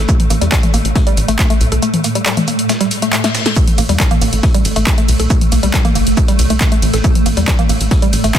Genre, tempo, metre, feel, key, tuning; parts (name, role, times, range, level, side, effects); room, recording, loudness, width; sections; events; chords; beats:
driving peak-time techno; 138 BPM; 4/4; straight; A phrygian; A4 = 439 Hz
tight sequencer bass; bass; 0.0-8.3 s; G1 to E2; -16 LUFS; equal; sidechain pumping
swarming drone; drone; 0.0-8.4 s; A2 to A3; -20 LUFS; right 1 dB; built-in reverb, sidechain pumping
woody wave-folded pluck; riff; 0.1-8.4 s; G3 to A4; -20 LUFS; left 1 dB; chorus, sidechain pumping, ping-pong delay
dusty soul sampler-style drum kit; drums; 0.1-8.4 s; hi-hat, shaker, snare drum; -27 LUFS; right 2 dB; high-pass filter on perc, high-pass filter on snare, high-pass filter on hats
electronic kick drum; drums; 0.1-8.4 s; -14 LUFS; equal
techno drum kit; drums; 0.1-8.4 s; handclaps, hi-hat, ride cymbal, snare drum, toms; -19 LUFS; left 1 dB; overdrive, sidechain pumping on hats, sidechain pumping on toms, sidechain pumping on cymbals
reverse cymbal; sound effects; 2.9-3.6 s; -24 LUFS; left 6 dB
little or no reverb; dense, heavily limited modern master; -11 LUFS; side -10 dB against mid
0.0-8.4 A section
reverse cymbal 2.9-3.6; drum fill 3.2-3.6
| 0.09 0.52 0.95 1.39 | 1.82 2.26 2.69 3.13 | 3.56 4.00 4.43 4.87 | 5.30 5.74 6.17 6.61 | 7.04 7.48 7.91 8.35